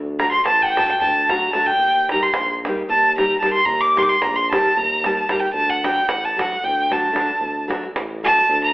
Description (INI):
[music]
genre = balkan folk, Balkan wedding band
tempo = 225 BPM (eighths)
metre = 7/8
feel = straight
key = D phrygian dominant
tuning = A4 = 439 Hz
[part]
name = mellow tuba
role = bass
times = 0.0-8.7 s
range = A1 to Eb2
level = -30 LUFS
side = equal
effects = none
[part]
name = clear violin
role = melody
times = 0.2-8.7 s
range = F#5 to D6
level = -17 LUFS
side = equal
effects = none
[part]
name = nylon-string guitar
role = accompaniment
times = 0.2-8.4 s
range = F#3 to G4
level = -24 LUFS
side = left 1 dB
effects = none
[part]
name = davul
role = percussion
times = 0.2-8.6 s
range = none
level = -28 LUFS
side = right 1 dB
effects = none
[sound]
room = wet large studio reverb, RT60 1.2 s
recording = band playing live in one room, telephone sound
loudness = -16 LUFS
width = side -20 dB against mid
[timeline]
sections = 0.0-8.7 A section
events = violin solo 0.0-8.7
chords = 0.0 D; 1.8 Eb; 5.5 D